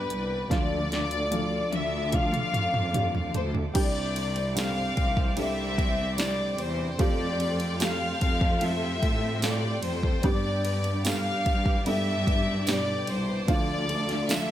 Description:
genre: pop ballad.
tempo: 74 BPM.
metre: 4/4.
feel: straight.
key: C major.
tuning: A4 = 439 Hz.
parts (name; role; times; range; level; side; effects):
warm studio violin section; melody; 0.0-14.5 s; B4 to F5; -30 LUFS; left 2 dB; none.
felt-muted upright piano; accompaniment; 0.0-14.5 s; G2 to A4; -33 LUFS; right 2 dB; none.
warm studio string section; sustained chords; 0.0-14.5 s; F4 to D6; -38 LUFS; right 1 dB; none.
flamenco guitar; arpeggios; 0.0-14.5 s; G2 to C5; -40 LUFS; left 4 dB; none.
dark studio cello section; bass; 0.0-14.5 s; C2 to A2; -31 LUFS; equal; none.
deep house drum kit; drums; 0.1-14.5 s; crash cymbal, hi-hat, kick drum, ride cymbal, snare drum, toms; -29 LUFS; equal; none.
tambourine; percussion; 4.6-14.5 s; none; -37 LUFS; right 8 dB; none.
room: light reverb, studio reverb.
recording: none.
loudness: -24 LUFS.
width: side -12 dB against mid.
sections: 0.0-3.8 A section; 3.8-14.5 B section.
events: drum fill 0.5-3.8.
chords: 0.0 G; 0.5 Dm; 3.8 Csus2; 7.0 Fadd9; 10.2 G; 13.5 Dm.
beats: | 0.51 1.32 2.13 2.94 | 3.75 4.57 5.38 6.19 | 7.00 7.81 8.62 9.43 | 10.24 11.05 11.86 12.67 | 13.48 14.29.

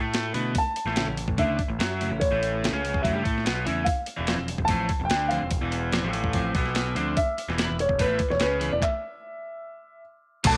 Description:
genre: indie rock.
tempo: 146 BPM.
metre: 4/4.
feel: straight.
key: unclear.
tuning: A4 = 444 Hz.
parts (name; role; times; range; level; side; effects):
dark upright piano; melody; 0.0-10.6 s; B4 to A5; -31 LUFS; equal; slapback echo.
crunchy overdriven guitar; riff; 0.0-10.6 s; E2 to B4; -32 LUFS; equal; none.
growling picked electric bass; bass; 0.0-10.6 s; E1 to B2; -33 LUFS; equal; overdrive.
clean electric guitar; riff; 0.1-10.6 s; B2 to C5; -35 LUFS; equal; analog chorus, slapback echo.
clean 12-bit digital drum machine; drums; 0.1-10.5 s; crash cymbal, handclaps, hi-hat, kick drum, snare drum; -30 LUFS; equal; none.
glockenspiel with hard plastic mallets; second line; 5.7-7.0 s; C6 to F6; -43 LUFS; equal; none.
warm analog pad; sustained chords; 10.5-10.6 s; A4 to D6; -38 LUFS; equal; chorus.
room: digital ambience.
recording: none.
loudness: -26 LUFS.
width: mono.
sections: 0.0-10.4 A section.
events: stop 8.8-10.4.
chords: 0.0 Dsus2; 0.6 A; 3.9 F5; 7.2 E5.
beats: 0.15 | 0.56 0.98 1.39 1.80 | 2.22 2.63 3.04 3.46 | 3.87 4.28 4.69 5.11 | 5.52 5.93 6.34 6.75 | 7.16 7.58 7.99 8.40 | 8.81 9.22 9.63 10.04 | 10.45.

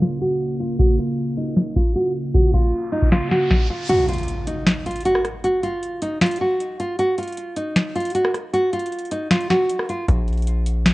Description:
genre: hip hop, trap.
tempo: 155 BPM.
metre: 4/4.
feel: half-time.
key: Bb minor.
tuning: A4 = 440 Hz.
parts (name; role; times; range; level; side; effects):
nylon-string guitar; melody; 0.0-10.1 s; Eb4 to Gb4; -21 LUFS; equal; low-pass filter.
deep dark ambient pad; sustained chords; 0.0-3.5 s; Db3 to F5; -27 LUFS; right 1 dB; chorus, built-in reverb.
booming analog drum machine; drums; 0.0-10.9 s; hi-hat, kick drum, rim click, snare drum; -19 LUFS; equal; vintage 12-bit sampler grit.
riser and impact; sound effects; 3.0-5.4 s; none; -29 LUFS; equal; none.
distorted 808-style bass; bass; 10.1-10.9 s; Bb1; -20 LUFS; equal; distortion.
room: little or no reverb.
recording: worn, warbling old tape, cassette tape, warbly pitch drift, low-pass filter.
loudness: -18 LUFS.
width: side -19 dB against mid.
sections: 0.0-3.9 A section; 3.9-10.9 B section.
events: filter sweep 0.0-3.9; riser 3.0-3.9; break 3.9-10.1; impact 3.9-5.4.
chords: 0.0 Bbm; 3.9 N.C..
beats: 0.02 0.41 | 0.79 1.18 1.57 1.96 | 2.34 2.73 3.12 3.50 | 3.89 4.28 4.67 5.05 | 5.44 5.83 6.21 6.60 | 6.99 7.37 7.76 8.15 | 8.54 8.92 9.31 9.70 | 10.08 10.47 10.86.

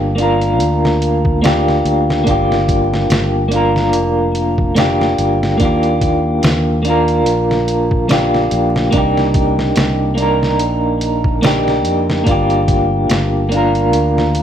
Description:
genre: trip hop.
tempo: 72 BPM.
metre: 4/4.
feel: swing 56% on 16ths.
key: G minor.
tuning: A4 = 440 Hz.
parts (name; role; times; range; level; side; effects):
electric guitar at the edge of break-up; accompaniment; 0.0-14.4 s; Bb3 to Bb4; -14 LUFS; equal; tremolo, low-pass filter, tape echo.
fingered electric bass; bass; 0.0-14.4 s; F1 to F2; -18 LUFS; equal; none.
trip hop sampler-style drum kit; drums; 0.2-14.4 s; hi-hat, kick drum, snare drum; -18 LUFS; equal; studio reverb.
room: digital ambience.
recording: rough home demo mix, vinyl crackle.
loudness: -12 LUFS.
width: side -9 dB against mid.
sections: 0.0-14.4 A section.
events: none.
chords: 0.0 Gm7; 5.6 Ebmaj7; 8.9 Cm7; 12.3 Gm7.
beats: 0.60 1.43 | 2.26 3.10 3.93 4.76 | 5.60 6.43 7.26 8.10 | 8.93 9.76 10.60 11.43 | 12.26 13.10 13.93.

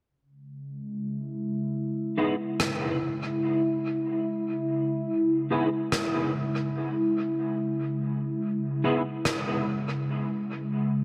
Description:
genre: ambient dub.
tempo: 72 BPM.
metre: 4/4.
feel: straight.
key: C# minor.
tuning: A4 = 439 Hz.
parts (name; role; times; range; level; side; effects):
warbly tape-like pad; sustained chords; 0.6-11.0 s; C#3 to E4; -30 LUFS; equal; chorus, built-in reverb.
semi-hollow electric guitar; stabs; 2.2-9.0 s; B3 to G#4; -34 LUFS; equal; ensemble chorus, low-pass filter, dub echo.
rim click; drums; 2.6-9.4 s; none; -34 LUFS; equal; dub echo.
room: moderate huge ambient reverb, RT60 4.7 s.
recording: dark, warm production.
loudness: -28 LUFS.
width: mono.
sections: 0.1-11.0 A section.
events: filter sweep on ambient pad 0.1-11.0.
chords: 0.1 C#m.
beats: | 0.09 0.93 1.76 2.59 | 3.43 4.26 5.09 5.93 | 6.76 7.59 8.43 9.26 | 10.09 10.93.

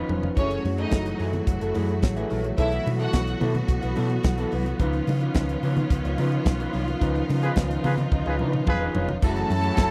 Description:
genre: disco.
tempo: 108 BPM.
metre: 4/4.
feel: straight.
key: F# dorian.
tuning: A4 = 440 Hz.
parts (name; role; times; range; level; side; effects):
electric guitar through a small old amp; accompaniment; 0.0-9.8 s; A3 to C#5; -35 LUFS; equal; subtle chorus.
tine electric piano; accompaniment; 0.0-9.9 s; D#3 to E#5; -33 LUFS; equal; none.
bright studio string section; sustained chords; 0.0-9.9 s; D#3 to F#4; -34 LUFS; equal; none.
hollow-body short-scale fingered electric bass; bass; 0.1-9.9 s; E1 to C#3; -29 LUFS; equal; none.
tight funk drum kit; drums; 0.1-9.9 s; crash cymbal, hi-hat, kick drum, snare drum, toms; -26 LUFS; equal; none.
congas; percussion; 0.1-9.9 s; none; -34 LUFS; equal; none.
clear studio violin section; second line; 0.4-3.4, 9.2-9.9 s; C#4 to A5; -31 LUFS; equal; none.
warm horn section; stabs; 7.4-9.9 s; C#4 to B4; -31 LUFS; equal; none.
room: little or no reverb.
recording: dry, close 1970s-style studio recording.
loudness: -24 LUFS.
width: mono.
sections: 0.4-9.2 A section.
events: drum fill 0.0-0.4, 8.1-9.2; band accent 7.0-9.2; tine electric piano fill 8.4-9.2.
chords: 0.4 F#m9; 2.6 B7sus4; 4.8 C#9; 9.2 F#m9.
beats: | 0.37 0.92 1.48 2.03 | 2.58 3.14 3.69 4.25 | 4.80 5.35 5.91 6.46 | 7.01 7.57 8.12 8.67 | 9.23 9.78.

